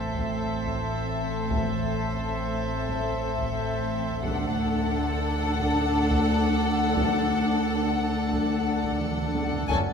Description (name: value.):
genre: cinematic, suspense film score.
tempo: 88 BPM.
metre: 4/4.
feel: straight.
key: unclear.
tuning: A4 = 442 Hz.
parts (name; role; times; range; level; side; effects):
warm symphonic violin section; melody; 0.0-9.8 s; E5 to G#5; -32 LUFS; left 4 dB; none.
warm symphonic violin section; second line; 0.0-9.8 s; A4; -32 LUFS; left 4 dB; none.
dark symphonic viola section; accompaniment; 0.0-9.8 s; C4 to D4; -33 LUFS; right 1 dB; none.
drifting glass-harmonics texture; sustained chords; 0.0-9.9 s; A4 to G#5; -34 LUFS; right 1 dB; chorus, built-in reverb.
rich studio cello section; bass; 0.0-9.8 s; D2 to A2; -30 LUFS; equal; none.
warm symphonic double bass section; bass; 0.0-9.8 s; F#1 to D2; -33 LUFS; right 2 dB; none.
organ-like drone; drone; 0.0-9.9 s; F#1 to D2; -33 LUFS; equal; ensemble chorus, built-in reverb.
impact; sound effects; 0.0-1.5 s; none; barely audible; none; none.
taiko ensemble; drums; 0.1-9.9 s; none; -34 LUFS; equal; none.
room: wet concert hall reverb, RT60 2.1 s.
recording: minimal, uncompressed stereo recording.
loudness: -24 LUFS.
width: side -6 dB against mid.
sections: 0.0-9.9 A section.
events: impact 0.0-1.5; drum fill 9.0-9.7.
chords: 0.0 Am; 4.2 D.